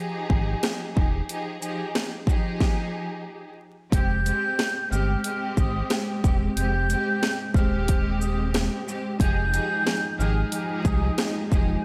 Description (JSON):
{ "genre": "hip hop, boom-bap hip-hop", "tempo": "91 BPM", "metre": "4/4", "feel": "swing 60% on 16ths", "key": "unclear", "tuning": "A4 = 440 Hz", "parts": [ { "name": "rich studio string section", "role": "accompaniment", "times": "0.0-11.8 s", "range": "F3 to Ab4", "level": "-32 LUFS", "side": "equal", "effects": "cassette tape" }, { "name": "sub bass with octave", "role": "bass", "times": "0.3-11.8 s", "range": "Eb1 to C2", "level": "-28 LUFS", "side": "equal", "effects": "none" }, { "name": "house drum kit", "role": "drums", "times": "0.3-11.7 s", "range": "hi-hat, kick drum, rim click, shaker, snare drum", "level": "-27 LUFS", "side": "equal", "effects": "none" }, { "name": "mellow concert flute", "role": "melody", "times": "3.9-11.8 s", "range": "Eb6 to G6", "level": "-32 LUFS", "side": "equal", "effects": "tape echo" }, { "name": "dark analog pad", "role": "sustained chords", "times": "3.9-11.8 s", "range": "F3 to G5", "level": "-35 LUFS", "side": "equal", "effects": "chorus" } ], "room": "moderate lush hall reverb, RT60 1.6 s, digital ambience", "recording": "dreamy mix soaked in reverb, vinyl crackle", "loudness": "-25 LUFS", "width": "mono", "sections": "0.0-3.9 A section; 3.9-11.8 B section", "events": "break 1.3-3.9", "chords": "0.0 Fm9; 3.9 Abmaj7; 9.2 Fm9" }